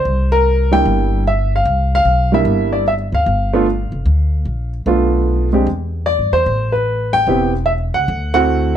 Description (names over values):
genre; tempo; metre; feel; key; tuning
jazz; 150 BPM; 4/4; swing 66% on 8ths; unclear; A4 = 440 Hz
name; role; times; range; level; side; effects
warm upright piano; melody; 0.0-8.8 s; G3 to G5; -15 LUFS; right 1 dB; plate reverb
upright bass; bass; 0.0-8.8 s; E1 to G2; -17 LUFS; equal; none
room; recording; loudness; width
light reverb; close, detailed microphones; -14 LUFS; side -10 dB against mid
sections
0.0-8.8 A section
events
none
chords
0.1 C9; 3.3 G7(no3); 4.9 Bm7b5; 5.7 Em7; 6.5 Am7; 8.1 D9